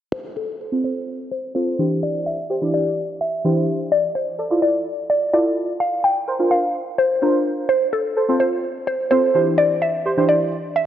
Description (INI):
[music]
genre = pop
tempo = 127 BPM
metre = 4/4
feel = straight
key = F major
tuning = A4 = 440 Hz
[part]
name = mallet-like synth pluck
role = melody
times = 0.1-10.9 s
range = A4 to G5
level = -20 LUFS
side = equal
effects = chorus, phaser, low-pass filter
[part]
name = deep mellow chord stab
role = accompaniment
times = 0.6-10.6 s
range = E3 to D5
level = -21 LUFS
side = right 1 dB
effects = chorus, low-pass filter
[sound]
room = moderate lush hall reverb, RT60 2.7 s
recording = worn, warbling old tape, cassette tape, warbly pitch drift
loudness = -18 LUFS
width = side -10 dB against mid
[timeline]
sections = 0.1-10.9 A section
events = filter sweep 0.1-10.9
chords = 0.1 F; 1.8 Cadd9/E; 3.9 Dmadd9; 5.8 Bbadd9; 7.7 F; 9.3 Cadd9/E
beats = | 0.14 0.61 1.08 1.55 | 2.02 2.50 2.97 3.44 | 3.91 4.39 4.86 5.33 | 5.80 6.28 6.75 7.22 | 7.69 8.17 8.64 9.11 | 9.58 10.06 10.53